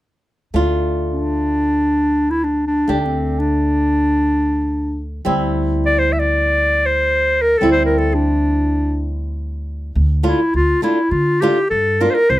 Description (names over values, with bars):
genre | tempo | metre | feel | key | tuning
klezmer | free time | none | none | D minor | A4 = 440 Hz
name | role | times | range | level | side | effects
flamenco guitar | accompaniment | 0.5-12.2 s | G3 to G4 | -21 LUFS | equal | none
upright bass | bass | 0.5-12.4 s | C2 to D3 | -21 LUFS | equal | none
clear clarinet | melody | 1.1-12.4 s | C4 to E5 | -16 LUFS | equal | none
room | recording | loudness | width
light reverb | close, detailed microphones | -15 LUFS | side -16 dB against mid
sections
0.5-10.0 A section; 10.0-12.4 B section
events
none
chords
0.5 Dm; 5.3 Cadd9/D; 10.0 Dm